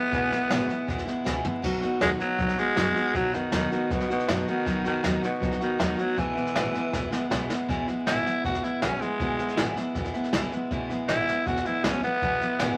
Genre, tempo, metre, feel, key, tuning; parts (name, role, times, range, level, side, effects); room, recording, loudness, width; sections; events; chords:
rockabilly; 159 BPM; 4/4; straight; E major; A4 = 441 Hz
growling tenor saxophone; melody; 0.0-12.8 s; B2 to F#4; -30 LUFS; equal
picked steel-string acoustic guitar; accompaniment; 0.0-12.8 s; E2 to F#4; -30 LUFS; equal
upright bass; bass; 0.1-12.8 s; E1 to F#2; -40 LUFS; equal
jazz brush drum kit; drums; 0.1-12.7 s; crash cymbal, hi-hat, kick drum, snare drum, toms; -33 LUFS; equal
moderate studio reverb, RT60 0.6 s; vinyl crackle; -27 LUFS; mono
0.0-7.7 A section; 7.7-12.8 B section
drum fill 1.3-1.6, 6.9-7.7; tenor saxophone solo 7.7-12.8
0.0 E; 1.6 B; 6.2 E